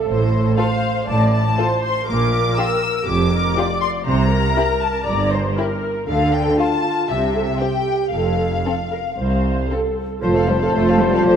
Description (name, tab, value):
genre	quick classical-period movement for symphony orchestra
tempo	119 BPM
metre	4/4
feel	rubato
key	F major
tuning	A4 = 442 Hz
part	warm studio viola section	accompaniment	0.0-11.4 s	A3 to D5	-23 LUFS	right 1 dB	none
part	clear studio violin section	melody	0.1-11.4 s	A4 to E6	-23 LUFS	left 4 dB	none
part	rich studio cello section	bass	0.1-11.4 s	C2 to A3	-22 LUFS	right 2 dB	none
part	warm studio double bass section	bass	0.1-11.4 s	F1 to D2	-23 LUFS	right 2 dB	none
part	rich studio violin section	second line	0.6-11.4 s	C4 to F5	-26 LUFS	left 3 dB	none
part	clear oboe	second line	10.2-11.4 s	C5	-27 LUFS	left 1 dB	none
part	concert flute	second line	10.2-11.4 s	A5	-26 LUFS	left 4 dB	none
part	mellow clarinet	second line	10.2-11.4 s	F4	-23 LUFS	left 1 dB	none
part	mellow bassoon	accompaniment	10.2-11.4 s	F3	-25 LUFS	right 3 dB	none
part	mellow French horn section	sustained chords	10.2-11.4 s	F4 to A4	-22 LUFS	left 5 dB	none
room	moderate concert hall reverb, RT60 2.0 s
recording	none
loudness	-16 LUFS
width	side -8 dB against mid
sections	0.0-10.2 A section; 10.2-11.4 B section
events	none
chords	0.1 F/A; 2.1 Bb6; 4.1 C7(no3); 6.1 Dm; 7.1 C; 8.1 F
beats	| 0.08 0.58 1.08 1.58 | 2.08 2.58 3.07 3.57 | 4.07 4.57 5.07 5.58 | 6.08 6.58 7.09 7.61 | 8.13 8.65 9.18 9.70 | 10.22 10.74 11.25